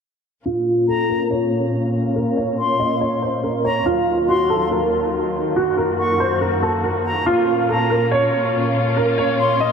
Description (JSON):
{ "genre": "hip hop", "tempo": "141 BPM", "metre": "4/4", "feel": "half-time", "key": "Bb minor", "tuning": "A4 = 440 Hz", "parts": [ { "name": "warm upright piano", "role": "melody", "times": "0.5-9.7 s", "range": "F4 to Eb5", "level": "-19 LUFS", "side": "right 1 dB", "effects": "ensemble chorus, low-pass filter, ping-pong delay" }, { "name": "warm studio string section", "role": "sustained chords", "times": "0.5-9.7 s", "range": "Eb2 to Gb4", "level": "-22 LUFS", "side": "left 1 dB", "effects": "low-pass filter" }, { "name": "silver concert flute", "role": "second line", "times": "0.9-9.7 s", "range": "Bb5 to Db6", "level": "-26 LUFS", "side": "left 3 dB", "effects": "ping-pong delay" } ], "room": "wet huge ambient reverb, RT60 8.1 s", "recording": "dreamy mix soaked in reverb", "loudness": "-17 LUFS", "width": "side -6 dB against mid", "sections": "0.5-9.7 A section", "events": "filter sweep 0.5-9.7", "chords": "0.5 Bbm; 3.9 Ebmadd9; 5.6 Gb6; 7.3 Bbm" }